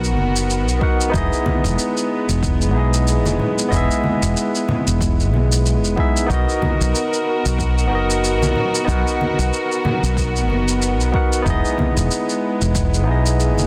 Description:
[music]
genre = sunset chillout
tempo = 93 BPM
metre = 4/4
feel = swing 57% on 16ths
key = B major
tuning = A4 = 442 Hz
[part]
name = barky tine electric piano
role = accompaniment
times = 0.0-13.7 s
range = B3 to F#5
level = -24 LUFS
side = equal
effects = tape echo
[part]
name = dark studio string section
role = sustained chords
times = 0.0-13.7 s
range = G#3 to A#4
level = -26 LUFS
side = equal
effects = none
[part]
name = woody fretless electric bass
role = bass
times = 0.0-13.7 s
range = E1 to B1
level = -21 LUFS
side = equal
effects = none
[part]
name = shaker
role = drums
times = 0.0-13.7 s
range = none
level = -29 LUFS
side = equal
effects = studio reverb
[part]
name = congas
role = percussion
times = 0.2-13.7 s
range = none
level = -28 LUFS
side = equal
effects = none
[part]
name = electronic kick drum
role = drums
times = 0.8-12.9 s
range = none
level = -25 LUFS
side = equal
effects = studio reverb
[sound]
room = light reverb, small room ambience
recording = dense, heavily limited modern master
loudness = -18 LUFS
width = mono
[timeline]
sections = 0.0-13.7 A section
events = none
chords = 0.0 Bmaj7; 1.1 Emaj7; 6.3 Bmaj7; 11.5 Emaj7

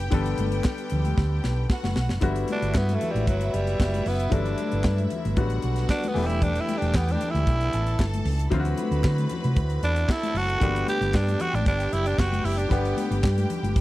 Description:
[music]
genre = disco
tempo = 114 BPM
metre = 4/4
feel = straight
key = G major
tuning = A4 = 440 Hz
[part]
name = clear symphonic string section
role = second line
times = 0.0-13.8 s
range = E4 to B5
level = -35 LUFS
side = right 2 dB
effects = none
[part]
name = bright grand piano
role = accompaniment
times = 0.0-13.8 s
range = D3 to A4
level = -32 LUFS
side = left 4 dB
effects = none
[part]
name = dark French horn section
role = sustained chords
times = 0.0-13.8 s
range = D3 to B4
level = -36 LUFS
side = left 1 dB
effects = none
[part]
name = hollow-body short-scale fingered electric bass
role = bass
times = 0.0-13.8 s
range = E1 to D3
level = -25 LUFS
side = equal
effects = none
[part]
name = tight funk drum kit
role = drums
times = 0.0-13.8 s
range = handclaps, hi-hat, kick drum, snare drum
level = -26 LUFS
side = equal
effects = none
[part]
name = congas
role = percussion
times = 0.1-13.8 s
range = none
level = -34 LUFS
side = left 5 dB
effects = none
[part]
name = growling tenor saxophone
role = melody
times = 2.5-13.2 s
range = F#3 to G4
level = -28 LUFS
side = right 1 dB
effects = none
[sound]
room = little or no reverb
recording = dry, close 1970s-style studio recording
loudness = -22 LUFS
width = side -16 dB against mid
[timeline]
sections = 0.0-2.2 A section; 2.2-13.8 B section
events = drum fill 1.2-2.2; tenor saxophone solo 2.2-13.8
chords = 0.0 Gmaj7; 6.2 Em7; 8.5 D7; 10.6 Gmaj7

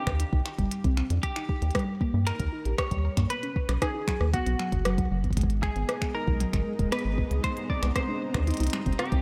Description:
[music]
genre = IDM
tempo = 116 BPM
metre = 4/4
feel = straight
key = unclear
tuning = A4 = 440 Hz
[part]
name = semi-hollow electric guitar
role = melody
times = 0.0-9.2 s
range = F#4 to D5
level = -37 LUFS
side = equal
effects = analog chorus, delay
[part]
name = harp-like synth pluck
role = arpeggios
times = 0.0-9.2 s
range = F#3 to G4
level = -36 LUFS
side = equal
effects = chorus, delay
[part]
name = rubbery square bass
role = bass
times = 0.1-9.2 s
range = D#1 to G2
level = -29 LUFS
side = equal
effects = none
[part]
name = electronic kick drum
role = drums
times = 0.1-9.2 s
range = none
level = -32 LUFS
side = equal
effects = none
[part]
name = glitchy drum kit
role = drums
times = 0.1-9.2 s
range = finger snaps, hi-hat, rim click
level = -37 LUFS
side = equal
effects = none
[part]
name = granular cloud pad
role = sustained chords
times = 6.0-9.2 s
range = G#3 to A#5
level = -38 LUFS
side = equal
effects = built-in reverb
[part]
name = bubbling stepped-filter texture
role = texture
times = 5.5-9.2 s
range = D#4 to D#5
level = -47 LUFS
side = equal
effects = chorus, built-in reverb
[sound]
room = light reverb, digital ambience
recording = none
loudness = -28 LUFS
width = mono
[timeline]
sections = 0.0-9.2 A section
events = none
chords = 0.0 Cmadd9; 1.2 D#; 3.3 Badd9; 5.4 G#m7; 7.4 Cmadd9

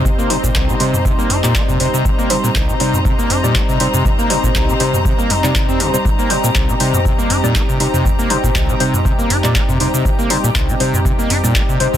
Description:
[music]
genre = acid house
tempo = 120 BPM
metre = 4/4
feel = swing 54% on 16ths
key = C minor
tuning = A4 = 440 Hz
[part]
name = lush unison pad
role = sustained chords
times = 0.0-12.0 s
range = G3 to C5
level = -22 LUFS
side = equal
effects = chorus, sidechain pumping
[part]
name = overdriven acid bass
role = riff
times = 0.0-12.0 s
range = C2 to Eb4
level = -19 LUFS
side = equal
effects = wide subtle chorus, sidechain pumping, tape echo
[part]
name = dark chamber string section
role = texture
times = 0.0-12.0 s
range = C4 to Bb5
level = -24 LUFS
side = left 3 dB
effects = sidechain pumping
[part]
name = booming analog drum machine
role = drums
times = 0.1-12.0 s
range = handclaps, hi-hat, shaker, toms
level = -20 LUFS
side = equal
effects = overdrive
[part]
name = electronic kick drum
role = drums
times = 0.1-11.7 s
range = none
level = -18 LUFS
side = equal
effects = overdrive
[part]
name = deep mellow chord stab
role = stabs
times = 0.3-11.9 s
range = G3 to D5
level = -23 LUFS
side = left 1 dB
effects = chorus, tape echo
[sound]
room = little or no reverb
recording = dense, heavily limited modern master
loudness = -13 LUFS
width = side -10 dB against mid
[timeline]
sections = 0.0-12.0 A section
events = none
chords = 0.0 Cm

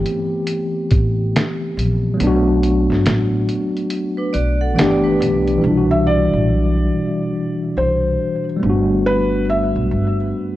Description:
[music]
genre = lo-fi hip hop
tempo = 70 BPM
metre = 4/4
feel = swing 64% on 16ths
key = unclear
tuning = A4 = 441 Hz
[part]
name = tine electric piano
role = accompaniment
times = 0.0-10.6 s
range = B2 to G4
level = -18 LUFS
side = left 1 dB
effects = medium stereo tremolo, cassette tape
[part]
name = upright bass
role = bass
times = 0.0-10.3 s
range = G1 to C2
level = -20 LUFS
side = equal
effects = none
[part]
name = lo-fi sampler-style drum kit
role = drums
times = 0.1-5.6 s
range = hi-hat, kick drum, snare drum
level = -20 LUFS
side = equal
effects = none
[part]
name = vibraphone with medium hard mallets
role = second line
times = 4.2-5.6 s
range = D4 to F#5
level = -26 LUFS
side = right 2 dB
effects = tape echo
[part]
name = felt-muted upright piano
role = melody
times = 5.9-10.1 s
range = B4 to E5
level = -22 LUFS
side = equal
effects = tape echo
[sound]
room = moderate concert hall reverb, RT60 2.0 s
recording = worn, warbling old tape, cassette tape, warbly pitch drift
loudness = -15 LUFS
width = side -15 dB against mid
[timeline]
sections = 0.0-5.6 A section; 5.6-10.6 B section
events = kick muted 2.2-5.6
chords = 0.0 Am7; 2.2 Bm7; 4.8 G6; 5.6 Cmaj9#11; 8.6 Gmaj7

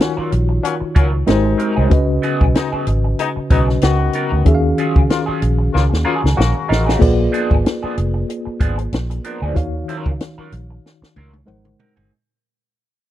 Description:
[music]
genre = lush 1970s-style soul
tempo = 94 BPM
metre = 4/4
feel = swing 54% on 16ths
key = Eb minor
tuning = A4 = 445 Hz
[part]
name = tine electric piano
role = accompaniment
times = 0.0-12.1 s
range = Db3 to Db6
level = -20 LUFS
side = left 1 dB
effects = overdrive, fast stereo tremolo
[part]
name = electric guitar through a small old amp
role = riff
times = 0.0-12.1 s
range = F3 to Bb4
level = -26 LUFS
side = right 3 dB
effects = wah
[part]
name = warm horn section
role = stabs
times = 0.0-7.0 s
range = Bb2 to Gb4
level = -23 LUFS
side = left 8 dB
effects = none
[part]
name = compact cocktail drum kit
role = drums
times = 0.0-12.1 s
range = crash cymbal, hi-hat, kick drum, snare drum, toms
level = -16 LUFS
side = equal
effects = none
[part]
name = vintage muted fingered electric bass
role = bass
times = 0.2-12.1 s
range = F1 to Eb2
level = -18 LUFS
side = equal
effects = none
[sound]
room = studio reverb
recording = dry, close 1970s-style studio recording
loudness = -14 LUFS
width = side -13 dB against mid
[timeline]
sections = 0.0-7.0 A section; 7.0-12.1 B section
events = drum fill 5.7-7.0, 10.8-12.1; tine electric piano fill 5.7-7.0; fade-out 7.0-12.1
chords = 0.0 Ebm9; 1.3 Ab7; 1.9 Db9sus4; 4.5 Ebm11; 7.0 Bb7b9; 9.6 Ebm9; 11.5 Ab7

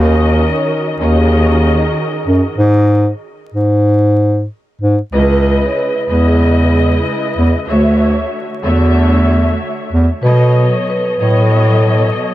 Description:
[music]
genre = hip hop, boom-bap hip-hop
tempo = 94 BPM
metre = 4/4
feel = swing 63% on 16ths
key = C# minor from 5.1 s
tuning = A4 = 440 Hz
[part]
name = vibraphone with soft mallets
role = melody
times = 0.0-12.1 s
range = G#4 to C#5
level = -20 LUFS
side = right 1 dB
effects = high-pass filter, low-pass filter, analog delay
[part]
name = dark studio string section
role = accompaniment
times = 0.0-12.3 s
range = B2 to E5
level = -17 LUFS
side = left 1 dB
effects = high-pass filter, low-pass filter, analog delay
[part]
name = mellow bass clarinet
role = bass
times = 0.0-12.1 s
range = C#2 to B2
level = -11 LUFS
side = equal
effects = none
[sound]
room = little or no reverb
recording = echo-heavy mix, vinyl crackle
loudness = -11 LUFS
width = side -15 dB against mid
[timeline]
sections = 0.0-5.1 A section; 5.1-12.3 B section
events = none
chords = 0.0 D#m7; 2.6 N.C.; 5.1 C#m7; 7.7 Dmaj7; 10.2 B7

